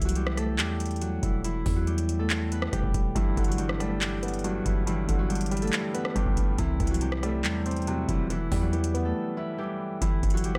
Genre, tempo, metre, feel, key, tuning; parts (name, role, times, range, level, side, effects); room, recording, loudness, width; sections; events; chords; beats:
hip hop, trap; 140 BPM; 4/4; half-time; G major; A4 = 439 Hz
Celtic harp; melody; 0.0-10.6 s; E3 to B4; -33 LUFS; equal
hard-hitting 808-style bass; bass; 0.0-10.6 s; E1 to E2; -32 LUFS; equal
booming analog drum machine; drums; 0.0-10.6 s; handclaps, hi-hat, kick drum, rim click; -32 LUFS; equal
felt-muted upright piano; accompaniment; 3.2-10.0 s; G2 to E4; -34 LUFS; equal
little or no reverb; -28 LUFS; mono
0.0-10.0 A section
break 9.2-10.0
0.0 C; 1.4 Em; 3.2 G; 6.6 C; 8.3 Em; 10.0 G
0.16 0.59 1.01 | 1.44 1.87 2.30 2.73 | 3.16 3.59 4.01 4.44 | 4.87 5.30 5.73 6.16 | 6.59 7.01 7.44 7.87 | 8.30 8.73 9.16 9.59 | 10.02 10.44